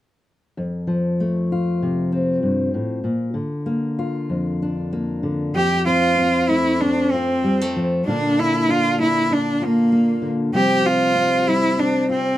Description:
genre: acoustic folk duo or small band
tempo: 96 BPM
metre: 4/4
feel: straight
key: unclear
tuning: A4 = 440 Hz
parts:
  - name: fingerpicked steel-string acoustic guitar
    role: accompaniment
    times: 0.6-12.4 s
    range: F2 to F4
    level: -20 LUFS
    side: left 1 dB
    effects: none
  - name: clear cello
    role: melody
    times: 5.6-12.4 s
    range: Bb3 to G4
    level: -18 LUFS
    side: right 1 dB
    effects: none
room: moderate studio reverb, RT60 0.8 s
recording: dark, warm production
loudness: -17 LUFS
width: side -14 dB against mid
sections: 0.6-5.6 A section; 5.6-12.4 B section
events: none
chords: 0.6 F; 3.1 Bb; 5.6 F; 8.1 Bb; 10.5 Csus4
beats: | 0.56 1.19 1.81 2.44 | 3.06 3.69 4.31 4.93 | 5.56 6.18 6.80 7.43 | 8.05 8.68 9.30 9.92 | 10.55 11.17 11.79

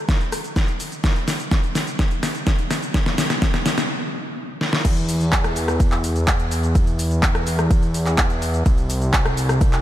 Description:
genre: EDM, festival progressive house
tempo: 126 BPM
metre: 4/4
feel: straight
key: unclear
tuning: A4 = 437 Hz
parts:
  - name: electronic kick drum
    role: drums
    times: 0.1-9.7 s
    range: none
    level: -19 LUFS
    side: equal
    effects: none
  - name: pop drum kit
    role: drums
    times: 0.1-9.8 s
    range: crash cymbal, handclaps, hi-hat, ride cymbal, rim click, shaker, snare drum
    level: -22 LUFS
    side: equal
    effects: overdrive
  - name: fat analog bass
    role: bass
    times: 4.8-9.8 s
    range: C2 to E2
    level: -21 LUFS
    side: equal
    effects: tube saturation, sidechain pumping
room: light reverb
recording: none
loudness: -18 LUFS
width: side -13 dB against mid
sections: 0.0-4.8 A section; 4.8-9.8 B section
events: build-up 0.0-4.8; drum fill 0.0-3.9, 4.6; stop 3.9-4.8; drop 4.8-9.8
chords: none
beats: 0.09 0.56 | 1.04 1.52 1.99 2.47 | 2.94 3.42 3.90 4.37 | 4.85 5.33 5.80 6.28 | 6.75 7.23 7.71 8.18 | 8.66 9.13 9.61

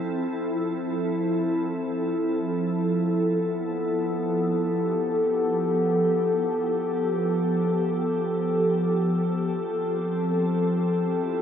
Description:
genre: ambient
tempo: free time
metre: none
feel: none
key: F lydian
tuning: A4 = 440 Hz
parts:
  - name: glassy FM pad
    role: solo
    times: 0.0-11.4 s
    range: F3 to A4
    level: -23 LUFS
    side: equal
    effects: ensemble chorus, built-in reverb, diffuse ambient delay
room: wet huge ambient reverb, RT60 8.9 s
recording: none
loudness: -23 LUFS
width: side -8 dB against mid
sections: 0.0-9.3 A section; 9.3-11.4 B section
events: none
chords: 0.0 Fmaj7; 2.8 G9; 9.3 Fmaj7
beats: free time

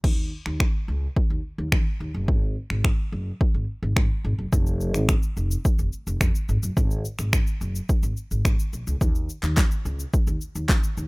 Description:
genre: dance-pop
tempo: 107 BPM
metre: 4/4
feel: straight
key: unclear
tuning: A4 = 441 Hz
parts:
  - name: upright bass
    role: bass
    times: 0.0-11.1 s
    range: F1 to Eb3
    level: -26 LUFS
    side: equal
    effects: sidechain pumping
  - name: deep house drum kit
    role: drums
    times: 0.0-11.1 s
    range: crash cymbal, finger snaps, handclaps, kick drum, shaker, snare drum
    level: -22 LUFS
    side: equal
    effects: none
room: little or no reverb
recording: rough home demo mix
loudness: -22 LUFS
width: side -28 dB against mid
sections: 0.0-11.1 A section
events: none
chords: none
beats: | 0.04 0.60 1.16 1.72 | 2.28 2.84 3.40 3.96 | 4.53 5.09 5.65 6.21 | 6.77 7.33 7.89 8.45 | 9.01 9.57 10.13 10.69

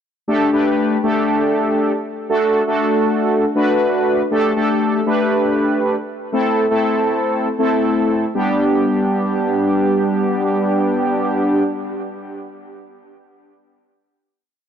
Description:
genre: pop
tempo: 119 BPM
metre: 4/4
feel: straight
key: G major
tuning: A4 = 440 Hz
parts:
  - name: analog synth brass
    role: solo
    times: 0.3-11.6 s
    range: G3 to B4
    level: -15 LUFS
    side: equal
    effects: chorus, tape echo
room: light reverb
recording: dry, gritty hardware recording, transformer saturation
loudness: -15 LUFS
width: side -8 dB against mid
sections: 0.3-8.3 verse; 8.3-12.4 final chord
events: none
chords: 0.3 Gsus2; 2.3 D; 4.3 Gsus2; 6.3 Am; 8.3 G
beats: | 0.28 0.78 1.28 1.79 | 2.29 2.80 3.30 3.81 | 4.31 4.81 5.32 5.82 | 6.33 6.83 7.33 7.84 | 8.34 8.85 9.35 9.86 | 10.36 10.87 11.37

